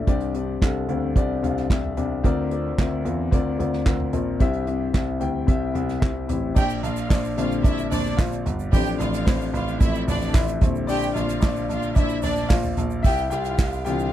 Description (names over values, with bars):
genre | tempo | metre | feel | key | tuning
piano-driven pop | 111 BPM | 4/4 | straight | unclear | A4 = 440 Hz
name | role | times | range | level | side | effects
dark upright piano | accompaniment | 0.0-14.1 s | G2 to G5 | -26 LUFS | left 6 dB | none
warm concert grand piano | bass | 0.0-14.1 s | G1 to E2 | -27 LUFS | right 3 dB | none
unplugged drum kit | drums | 0.1-14.0 s | crash cymbal, handclaps, hi-hat, kick drum, snare drum, toms | -22 LUFS | right 1 dB | none
warm studio violin section | second line | 6.6-14.1 s | D4 to G5 | -30 LUFS | right 2 dB | none
egg shaker | percussion | 6.6-14.1 s | none | -46 LUFS | right 23 dB | none
room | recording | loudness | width
little or no reverb | dry, close 1970s-style studio recording | -20 LUFS | side -12 dB against mid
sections
0.0-6.6 A section; 6.6-14.1 B section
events
upright piano solo 6.6-14.1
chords
0.1 Csus2; 2.2 Bbadd9/D; 4.4 C; 6.6 Bb6; 8.7 F/A; 10.6 Bb6; 13.0 Cadd9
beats
| 0.08 0.62 1.16 1.70 | 2.24 2.78 3.32 3.86 | 4.40 4.94 5.49 6.03 | 6.57 7.11 7.65 8.19 | 8.73 9.27 9.81 10.35 | 10.89 11.43 11.97 12.51 | 13.05 13.59